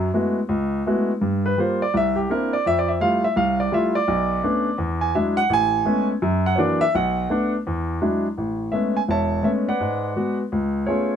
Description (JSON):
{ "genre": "solo jazz", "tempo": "168 BPM", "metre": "4/4", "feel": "swing 64% on 8ths", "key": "A major", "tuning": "A4 = 441 Hz", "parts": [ { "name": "warm baby grand piano", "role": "solo", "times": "0.0-11.2 s", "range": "E1 to A5", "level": "-19 LUFS", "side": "equal", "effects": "none" } ], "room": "light reverb", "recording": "close, detailed microphones", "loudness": "-19 LUFS", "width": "side -8 dB against mid", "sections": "0.0-8.4 A section; 8.4-11.2 B section", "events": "grand piano solo 0.0-8.4", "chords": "0.0 F#m11; 1.2 Gm7; 1.9 C9; 2.6 Fmaj9; 4.1 Bm9; 4.8 E9; 5.5 Amaj9; 6.2 F#aug7; 6.9 Bm7; 7.7 E9; 8.4 Amaj9; 9.8 G#m7b5; 10.5 C#7b13", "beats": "0.14 0.49 0.85 | 1.21 1.57 1.93 2.29 | 2.64 3.00 3.36 3.72 | 4.08 4.43 4.79 5.15 | 5.51 5.87 6.22 6.58 | 6.94 7.30 7.65 8.01 | 8.37 8.73 9.09 9.44 | 9.80 10.16 10.52 10.88" }